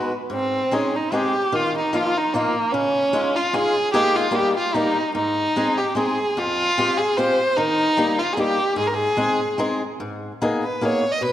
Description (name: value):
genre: musette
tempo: 149 BPM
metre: 3/4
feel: rubato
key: Ab major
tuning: A4 = 442 Hz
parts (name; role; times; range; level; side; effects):
- dark violin; melody; 0.0-11.3 s; Bb3 to D#5; -20 LUFS; equal; none
- fingerpicked swing-style acoustic guitar; accompaniment; 0.0-11.3 s; F2 to Ab4; -24 LUFS; left 1 dB; none
room: moderate concert hall reverb, RT60 2.1 s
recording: none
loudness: -18 LUFS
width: side -12 dB against mid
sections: 0.3-10.0 A section; 10.0-11.3 B section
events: none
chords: 0.3 Ab; 1.5 Ebsus2; 2.7 Dbadd9; 3.9 Ebsus4; 4.3 Eb; 5.2 Ab; 6.4 Fmadd9; 7.6 Eb; 8.8 Ab; 10.0 G#madd9